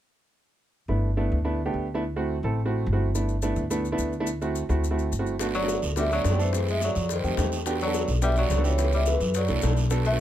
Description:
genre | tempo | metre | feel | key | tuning
Afro-Cuban jazz | 213 BPM | 4/4 | straight | G major | A4 = 439 Hz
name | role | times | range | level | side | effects
warm grand piano | accompaniment | 0.9-10.2 s | A3 to A4 | -28 LUFS | right 2 dB | none
upright bass | bass | 0.9-10.2 s | G1 to F#2 | -26 LUFS | equal | none
maracas | percussion | 3.1-10.2 s | none | -39 LUFS | left 9 dB | none
bongos | percussion | 5.4-10.1 s | none | -34 LUFS | left 8 dB | none
guiro | percussion | 5.4-10.2 s | none | -37 LUFS | right 4 dB | none
breathy tenor saxophone | second line | 5.5-10.2 s | Eb3 to A3 | -32 LUFS | left 6 dB | none
vibraphone with medium mallets | melody | 5.6-10.2 s | B4 to E5 | -29 LUFS | right 2 dB | none
room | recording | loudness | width
little or no reverb | close, detailed microphones | -23 LUFS | side -12 dB against mid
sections
0.9-5.4 A section; 5.4-10.2 B section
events
none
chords
0.9 G6; 2.0 D7; 3.1 G6; 4.3 D7; 5.4 Gmaj9; 6.5 F#m7b5; 7.1 F9; 7.7 Em9; 8.8 C#m7b5; 9.3 F#7alt

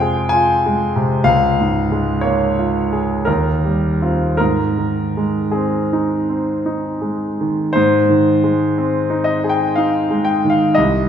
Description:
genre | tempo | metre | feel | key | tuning
classical, romantic nocturne for solo piano | 52-63 BPM | 3/4 | rubato | Ab major | A4 = 439 Hz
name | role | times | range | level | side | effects
clear concert grand piano | solo | 0.0-11.1 s | C2 to Ab5 | -14 LUFS | equal | none
room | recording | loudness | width
wet recital hall reverb, RT60 1.7 s | minimal, uncompressed stereo recording | -15 LUFS | side -8 dB against mid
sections
0.0-7.8 A section; 7.8-11.1 A section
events
none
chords
0.0 Fm; 1.3 Bbm7/Db; 3.3 Eb69; 4.4 Ab

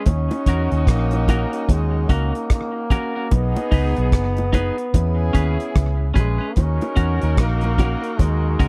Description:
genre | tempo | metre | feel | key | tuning
roots reggae | 74 BPM | 4/4 | swing 60% on 16ths | unclear | A4 = 440 Hz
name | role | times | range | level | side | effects
bright trombone | melody | 0.0-8.7 s | G#3 to C#4 | -29 LUFS | equal | dub echo
clean electric guitar | accompaniment | 0.0-8.7 s | C#4 to B4 | -32 LUFS | equal | spring reverb, dub echo
clear horn section | second line | 0.1-8.7 s | B3 to A#4 | -31 LUFS | equal | dub echo
vintage muted fingered electric bass | bass | 0.1-8.7 s | F#1 to E2 | -22 LUFS | equal | none
damped 70s drum kit | drums | 0.1-8.7 s | hi-hat, kick drum, rim click | -20 LUFS | equal | none
bongos | percussion | 0.1-8.4 s | none | -30 LUFS | equal | none
room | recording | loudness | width
little or no reverb | dry, close 1970s-style studio recording | -20 LUFS | mono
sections
0.0-8.7 A section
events
none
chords
0.1 D#m7; 3.3 B6; 4.9 E6; 6.6 D#m7

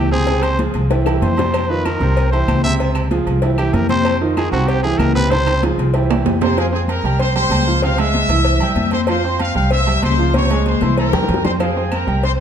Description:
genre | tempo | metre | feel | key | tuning
latin, salsa | 191 BPM | 4/4 | straight | F harmonic minor | A4 = 440 Hz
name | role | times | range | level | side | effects
growling trumpet | melody | 0.0-5.6 s | Gb4 to E5 | -21 LUFS | left 1 dB | none
bright baby grand piano | accompaniment | 0.0-12.4 s | C3 to C6 | -21 LUFS | right 4 dB | none
upright bass | bass | 0.0-12.4 s | C2 to F2 | -18 LUFS | equal | none
congas | percussion | 0.1-12.4 s | none | -24 LUFS | left 5 dB | none
agogo bells and timbales | percussion | 0.3-12.2 s | none | -27 LUFS | right 6 dB | none
cowbell and bongos | percussion | 0.3-12.4 s | none | -24 LUFS | left 5 dB | none
claves | percussion | 0.4-6.3, 11.6-12.1 s | none | -38 LUFS | left 3 dB | none
brilliant trumpet section | melody | 6.4-12.3 s | Ab4 to E6 | -20 LUFS | left 1 dB | none
room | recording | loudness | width
moderate recital hall reverb, RT60 1.4 s | dark, warm production | -14 LUFS | side -8 dB against mid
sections
0.0-6.6 A section; 6.6-12.4 B section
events
trumpet solo 0.0-6.6; drum fill 0.9-1.5, 5.3-6.6, 10.3-11.6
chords
0.3 Dbmaj7; 0.9 C; 1.5 F5; 2.2 C; 2.8 Dbmaj7; 3.4 C; 4.1 F5; 4.7 C; 5.3 Dbmaj7; 5.9 C; 6.6 Fm; 7.2 C5; 7.8 Dbmaj7; 8.5 C; 9.1 F5; 9.7 C; 10.3 Db5; 11.0 C7; 11.6 Fm

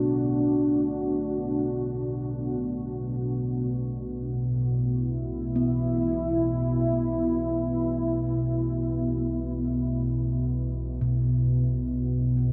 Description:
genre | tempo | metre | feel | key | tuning
dark ambient drone | free time | none | none | B minor | A4 = 441 Hz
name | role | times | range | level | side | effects
deep dark ambient pad | sustained chords | 0.0-12.5 s | B2 to F#4 | -28 LUFS | equal | chorus, built-in reverb
bronze singing bowl | arpeggios | 0.0-12.5 s | B2 to B3 | -35 LUFS | equal | diffuse ambient delay
deep rumbling drone | drone | 0.0-12.5 s | B1 to B2 | -36 LUFS | equal | built-in reverb, lush chorus
room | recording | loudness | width
wet huge ambient reverb, RT60 7.5 s | dreamy mix soaked in reverb | -27 LUFS | mono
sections
0.0-12.5 A section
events
fade-in on synth drone 0.0-12.5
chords
0.0 Bm; 10.9 G7/B

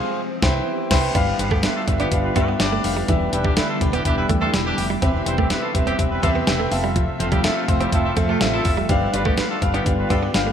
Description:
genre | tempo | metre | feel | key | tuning
1980s-style pop | 124 BPM | 4/4 | straight | unclear | A4 = 441 Hz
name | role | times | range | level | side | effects
clear grand piano | accompaniment | 0.0-10.5 s | G2 to E6 | -23 LUFS | left 1 dB | wide subtle chorus
soft string machine | sustained chords | 0.0-10.5 s | C3 to E5 | -28 LUFS | equal | ensemble chorus
woody fretless electric bass | bass | 0.4-10.5 s | E1 to G2 | -26 LUFS | equal | none
clean 12-bit digital drum machine | drums | 0.4-10.5 s | crash cymbal, hi-hat, kick drum, snare drum | -22 LUFS | equal | gated reverb
direct-recorded clean electric guitar | riff | 1.2-10.5 s | E3 to D4 | -28 LUFS | right 7 dB | ensemble chorus, digital delay
bright horn section | stabs | 1.4-10.2 s | C3 to C5 | -28 LUFS | right 1 dB | digital delay
room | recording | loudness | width
moderate plate reverb, RT60 1.5 s | bright 1980s-style digital production | -18 LUFS | side -8 dB against mid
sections
0.0-1.2 A section; 1.2-10.5 B section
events
band accent 0.0-1.2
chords
0.2 Cmaj7; 1.2 G7; 3.1 Em7; 5.0 Cmaj7/E; 6.7 Fmaj7; 8.9 G7

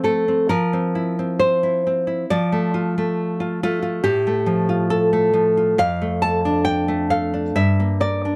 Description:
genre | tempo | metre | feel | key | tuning
romantic piece for solo classical guitar | 68 BPM | 2/4 | rubato | F major | A4 = 440 Hz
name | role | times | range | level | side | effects
nylon-string guitar | solo | 0.0-8.4 s | F2 to A5 | -20 LUFS | equal | none
room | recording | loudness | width
light reverb | dark, warm production | -20 LUFS | mono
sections
0.0-8.4 A section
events
none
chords
0.5 C7/F; 2.3 F; 4.0 F/A; 5.8 Dm/F; 7.6 Gm

